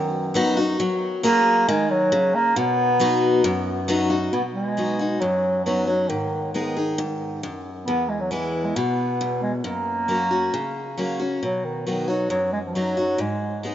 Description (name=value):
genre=country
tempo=135 BPM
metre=4/4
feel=straight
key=B major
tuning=A4 = 439 Hz
part: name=warm bass clarinet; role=melody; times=0.0-13.6 s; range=D#3 to B3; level=-23 LUFS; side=right 1 dB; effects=none
part: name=picked steel-string acoustic guitar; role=accompaniment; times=0.0-13.7 s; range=E2 to G#4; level=-23 LUFS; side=left 1 dB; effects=none
room=moderate plate reverb, RT60 3.9 s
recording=rough home demo mix, nothing above 7.6 kHz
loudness=-20 LUFS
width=side -11 dB against mid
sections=0.0-4.3 A section; 4.3-11.4 B section; 11.4-13.7 C section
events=none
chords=0.0 B; 0.8 F#add9; 2.6 B; 6.1 G#5; 7.9 E; 9.6 F#; 11.4 B; 13.2 G#m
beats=0.35 | 0.79 1.24 1.68 2.12 | 2.56 3.00 3.44 3.89 | 4.33 4.77 5.21 5.66 | 6.10 6.54 6.99 7.43 | 7.87 8.32 8.76 9.20 | 9.65 10.09 10.53 10.98 | 11.42 11.87 12.31 12.76 | 13.20 13.64